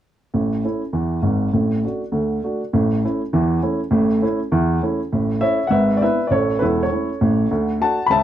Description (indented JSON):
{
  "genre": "jazz, stride piano",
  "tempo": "201 BPM",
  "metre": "4/4",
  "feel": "swing 65% on 8ths",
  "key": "A major",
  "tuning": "A4 = 440 Hz",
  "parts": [
    { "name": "dark upright piano", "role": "solo", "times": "0.3-8.2 s", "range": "E1 to B5", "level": "-17 LUFS", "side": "equal", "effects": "none" }
  ],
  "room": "moderate club reverb, RT60 0.6 s",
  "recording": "dark, warm production",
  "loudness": "-17 LUFS",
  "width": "side -11 dB against mid",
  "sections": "0.3-5.1 A section; 5.1-8.2 B section",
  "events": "none",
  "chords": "0.3 A; 1.5 D/A; 2.7 A; 5.7 E7/G#; 6.3 A; 7.5 D",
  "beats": "| 0.34 0.64 0.94 1.24 | 1.53 1.83 2.13 2.43 | 2.73 3.03 3.33 3.62 | 3.92 4.22 4.52 4.82 | 5.12 5.41 5.71 6.01 | 6.31 6.61 6.91 7.21 | 7.50 7.80 8.10"
}